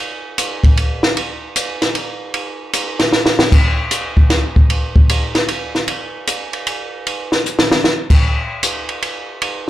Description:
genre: jazz.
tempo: 153 BPM.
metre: 3/4.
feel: swing 66% on 8ths.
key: none.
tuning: none.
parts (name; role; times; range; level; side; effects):
compact cocktail drum kit; drums; 0.4-9.5 s; crash cymbal, hi-hat, kick drum, ride cymbal, snare drum; -14 LUFS; equal; none.
room: moderate club reverb, RT60 0.5 s.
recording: live gig heard through the venue's PA, club reverb.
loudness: -14 LUFS.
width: side -14 dB against mid.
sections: 0.0-9.7 A section.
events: drum fill 3.1-3.5, 7.5-7.8.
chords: none.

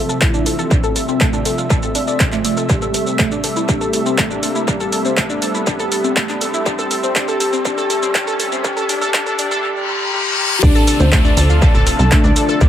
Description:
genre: melodic techno.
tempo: 121 BPM.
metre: 4/4.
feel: straight.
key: D minor.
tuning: A4 = 440 Hz.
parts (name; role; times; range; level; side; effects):
lush unison pad; sustained chords; 0.0-12.7 s; C3 to E5; -24 LUFS; right 1 dB; chorus, sidechain pumping.
analog pluck; arpeggios; 0.0-12.7 s; A3 to A5; -21 LUFS; left 1 dB; chorus, sidechain pumping, dub echo.
riser, reverse cymbal and downlifter; sound effects; 0.0-12.7 s; none; -24 LUFS; left 2 dB; none.
punchy analog drum machine; drums; 0.1-12.7 s; handclaps, hi-hat, shaker; -21 LUFS; right 1 dB; sidechain pumping on perc, high-pass filter on perc, sidechain pumping on hats, high-pass filter on hats, high-pass filter on snare, high-pass filter on room, tape echo.
soft octave-layered synth lead; melody; 0.2-12.7 s; D4 to G4; -23 LUFS; left 2 dB; chorus, sidechain pumping, dub echo.
electronic kick drum; drums; 0.2-12.7 s; none; -16 LUFS; equal; distortion.
plucky analog bass; bass; 10.6-12.7 s; D1 to D2; -15 LUFS; equal; sidechain pumping.
room: moderate spring reverb, RT60 1.9 s, digital ambience.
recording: echo-heavy mix, high-pass filter.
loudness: -14 LUFS.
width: side -10 dB against mid.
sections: 0.0-10.6 A section; 10.6-12.7 B section.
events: build-up 0.0-10.6; riser 0.0-9.6; filter sweep on synth pluck 0.0-10.6; filter sweep on soft synth lead 0.0-10.6; filter sweep on analog synth pad 0.0-10.6; filter sweep 0.0-10.6; reverse cymbal 9.6-10.6; drop 10.6-12.7.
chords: 0.0 Dm7; 2.7 Am7; 10.6 Dm7.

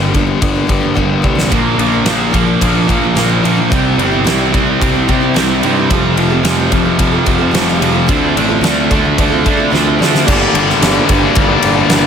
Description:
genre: quiet-loud alternative rock.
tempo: 110 BPM.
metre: 4/4.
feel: straight.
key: G minor.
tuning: A4 = 436 Hz.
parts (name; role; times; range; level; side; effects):
picked steel-string acoustic guitar; arpeggios; 0.0-10.3 s; G2 to A4; -20 LUFS; right 10 dB; tape echo.
thick fuzz guitar; riff; 0.0-12.1 s; F2 to D4; -15 LUFS; left 7 dB; distortion.
fuzz picked electric bass; bass; 0.0-12.1 s; F1 to D3; -18 LUFS; equal; overdrive.
huge arena drum kit; drums; 0.1-12.0 s; crash cymbal, kick drum, ride cymbal, snare drum; -16 LUFS; equal; none.
distorted electric guitar; riff; 1.5-10.3 s; F2 to D4; -17 LUFS; right 15 dB; distortion.
tight distorted guitar; riff; 10.3-12.1 s; G2 to G3; -15 LUFS; right 2 dB; distortion.
room: little or no reverb.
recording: none.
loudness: -10 LUFS.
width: side -7 dB against mid.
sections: 0.0-10.3 A section; 10.3-12.1 B section.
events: drum fill 1.0-1.5, 9.7-10.3.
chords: 0.0 Gm; 1.5 Bb; 3.7 C; 5.9 Fadd9; 8.1 Dm7; 10.3 Gm.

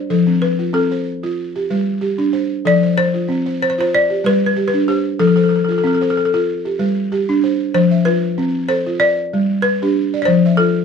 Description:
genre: west african traditional.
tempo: 94 BPM.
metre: 4/4.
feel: swing 55% on 16ths.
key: F lydian.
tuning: A4 = 441 Hz.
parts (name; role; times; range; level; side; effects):
balafon; melody; 0.0-10.8 s; G4 to D5; -17 LUFS; left 3 dB; none.
balafon; arpeggios; 0.0-10.8 s; F3 to E5; -16 LUFS; equal; none.
room: light reverb.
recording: dark, warm production.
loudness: -14 LUFS.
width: side -6 dB against mid.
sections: 0.0-7.7 A section; 7.7-10.8 B section.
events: none.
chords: 0.1 F; 1.4 G; 2.7 F; 3.9 G; 5.2 F; 6.5 G; 7.7 F; 9.0 G; 10.3 F.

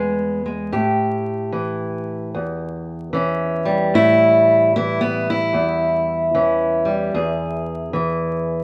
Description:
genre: acoustic country blues, solo or duo.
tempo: 75 BPM.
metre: 4/4.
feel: swing 64% on 8ths.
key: unclear.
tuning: A4 = 440 Hz.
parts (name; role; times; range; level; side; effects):
fingerpicked steel-string acoustic guitar; solo; 0.0-8.6 s; E2 to G#4; -20 LUFS; equal; none.
room: moderate stone room reverb, RT60 1.2 s.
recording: band playing live in one room, vinyl crackle.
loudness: -19 LUFS.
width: mono.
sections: 0.0-8.6 A section.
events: steel-string acoustic guitar solo 0.0-8.6.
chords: 0.0 E; 0.7 A7; 7.1 E.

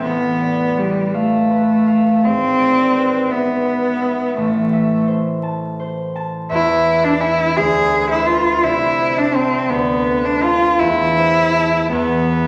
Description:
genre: classical, romantic duo for cello and harp.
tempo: 56 BPM (dotted quarters).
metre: 6/8.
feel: rubato.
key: A minor.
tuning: A4 = 439 Hz.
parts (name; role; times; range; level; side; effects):
rich cello; melody; 0.0-12.5 s; G3 to G#4; -18 LUFS; equal; none.
concert harp; accompaniment; 0.0-12.5 s; G#1 to B5; -23 LUFS; equal; none.
room: wet scoring stage reverb, RT60 1.9 s.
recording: vinyl crackle.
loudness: -17 LUFS.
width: mono.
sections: 0.0-12.5 A section.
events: none.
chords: 0.0 Bm7b5/A; 2.2 E7/G#; 4.4 Am; 6.5 E; 7.6 E7/D; 8.6 Am/C; 9.7 Bm7b5/D; 10.8 Am/E; 11.9 E5.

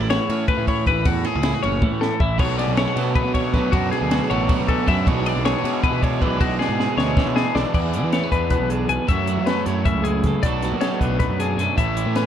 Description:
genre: math rock and midwest emo.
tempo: 314 BPM (eighths).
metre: 7/8.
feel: straight.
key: unclear.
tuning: A4 = 444 Hz.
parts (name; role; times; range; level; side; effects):
twelve-string electric guitar; accompaniment; 0.0-12.3 s; E2 to G#4; -26 LUFS; right 8 dB; none.
twelve-string electric guitar; arpeggios; 0.0-12.3 s; F#4 to G#5; -25 LUFS; left 9 dB; none.
fuzz picked electric bass; bass; 0.0-12.2 s; F#1 to F#3; -24 LUFS; equal; overdrive.
compact cocktail drum kit; drums; 0.1-12.3 s; crash cymbal, hi-hat, kick drum, ride cymbal, snare drum, toms; -23 LUFS; equal; none.
crunchy overdriven guitar; riff; 2.4-12.3 s; A2 to A4; -26 LUFS; right 1 dB; none.
room: light reverb.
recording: dark, warm production.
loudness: -18 LUFS.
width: side -9 dB against mid.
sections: 0.0-7.7 A section; 7.7-12.3 B section.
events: drum fill 1.8-2.4, 6.6-7.7.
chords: 0.0 A6; 2.4 Bm9; 5.1 E13/B; 7.7 E7; 9.1 F#m9; 10.4 Bm7.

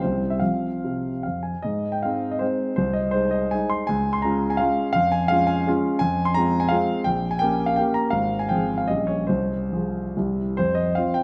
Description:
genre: classical, romantic triple-time dance for piano with dotted rhythms.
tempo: 131-178 BPM.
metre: 3/4.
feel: rubato.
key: Ab major, F minor from 6.0 s.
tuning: A4 = 440 Hz.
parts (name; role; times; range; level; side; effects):
warm grand piano; solo; 0.0-11.2 s; Ab1 to C6; -23 LUFS; equal; none.
room: wet recital hall reverb, RT60 1.7 s.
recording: dark, warm production.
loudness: -23 LUFS.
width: mono.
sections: 0.0-1.6 A section; 1.6-10.6 B section.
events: none.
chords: 0.0 C; 0.4 F5; 1.6 Ab; 2.8 Ab/C; 3.9 Db; 5.0 Db/F; 6.0 Fm; 7.1 Gdim/Bb; 8.1 Fm/Ab; 8.9 Gdim/Bb; 9.3 Fm/C; 10.2 C; 10.6 F5.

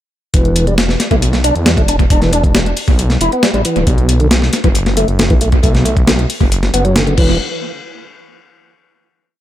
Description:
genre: breakbeat, breaks.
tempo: 136 BPM.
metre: 4/4.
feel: straight.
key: E minor.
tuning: A4 = 444 Hz.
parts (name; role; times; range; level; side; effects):
tonewheel organ; riff; 0.3-7.4 s; B2 to E4; -17 LUFS; equal; overdrive, fast rotary speaker, low-pass filter, analog delay.
detuned saw bass; bass; 0.3-7.4 s; D1 to E2; -15 LUFS; equal; none.
breakbeat sampler-style drum kit; drums; 0.3-7.3 s; crash cymbal, hi-hat, kick drum, snare drum; -14 LUFS; equal; analog delay.
electronic hi-hat; drums; 0.3-7.2 s; none; -26 LUFS; left 3 dB; none.
room: digital ambience.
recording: echo-heavy mix.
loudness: -10 LUFS.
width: side -12 dB against mid.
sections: 0.3-7.4 groove; 7.4-9.2 final hit.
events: none.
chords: 0.3 Em7; 3.9 Bm7; 7.2 N.C..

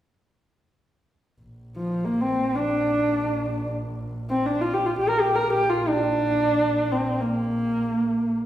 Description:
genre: mongolian traditional.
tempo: free time.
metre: none.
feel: none.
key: Bb gong mode.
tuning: A4 = 440 Hz.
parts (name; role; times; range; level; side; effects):
rich double bass; drone; 1.4-8.5 s; Bb1; -32 LUFS; right 1 dB; none.
dark horsehead fiddle; melody; 1.8-8.4 s; F3 to Bb4; -22 LUFS; equal; none.
room: wet recital hall reverb, RT60 1.8 s.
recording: recorded in a church or concert hall.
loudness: -21 LUFS.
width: side -12 dB against mid.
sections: 1.4-8.5 A section.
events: none.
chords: none.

